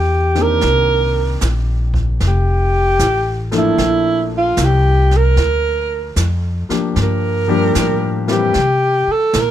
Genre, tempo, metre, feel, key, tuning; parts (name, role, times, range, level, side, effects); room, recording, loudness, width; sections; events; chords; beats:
jazz ballad; 76 BPM; 4/4; swing 66% on 8ths; F major; A4 = 441 Hz
breathy alto saxophone; melody; 0.0-9.5 s; E4 to Bb4; -16 LUFS; right 2 dB
upright bass; bass; 0.0-9.5 s; F1 to C3; -17 LUFS; equal
warm grand piano; accompaniment; 0.3-8.6 s; Eb3 to Bb4; -21 LUFS; left 6 dB
jazz brush drum kit; drums; 0.4-9.5 s; brushed snare drum, hi-hat, kick drum, snare drum; -25 LUFS; right 2 dB
little or no reverb; -13 LUFS; side -11 dB against mid
0.0-9.5 A section
alto saxophone solo 0.0-9.5
0.0 Fsus2 (rootless); 0.6 Cm9; 2.2 F69; 3.8 Bbmaj7; 7.0 Gm9; 8.5 Gmadd11
| 0.63 1.42 2.21 3.00 | 3.79 4.58 5.37 6.17 | 6.96 7.75 8.54 9.34